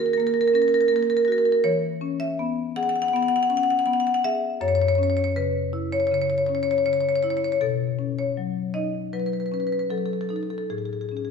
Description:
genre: classical, contemporary piece for solo marimba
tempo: 80 BPM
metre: 4/4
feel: rubato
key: unclear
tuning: A4 = 440 Hz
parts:
  - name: marimba with medium hard mallets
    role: solo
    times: 0.0-11.3 s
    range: F#2 to F#5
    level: -21 LUFS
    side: left 1 dB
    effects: none
room: wet recital hall reverb, RT60 1.5 s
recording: none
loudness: -21 LUFS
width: side -6 dB against mid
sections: 0.0-11.3 A section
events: none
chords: 0.0 D#m7 (rootless); 1.6 E69; 4.6 F#5; 7.6 B9; 10.7 Amaj7

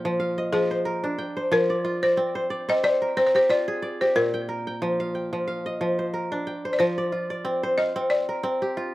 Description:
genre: west african traditional, West African string and xylophone music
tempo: 91 BPM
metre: 4/4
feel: swing 55% on 16ths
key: F dorian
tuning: A4 = 440 Hz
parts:
  - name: balafon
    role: melody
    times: 0.0-8.9 s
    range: Ab4 to F5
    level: -23 LUFS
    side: left 1 dB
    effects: none
  - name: kora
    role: arpeggios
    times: 0.0-8.9 s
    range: Bb2 to G5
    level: -25 LUFS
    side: equal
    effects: slapback echo
room: little or no reverb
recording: recorded outdoors, with no room sound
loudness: -22 LUFS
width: side -17 dB against mid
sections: 0.0-6.8 A section; 6.8-8.9 A section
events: none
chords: 0.0 Bb; 1.5 Fm; 4.2 Bb; 6.8 F5

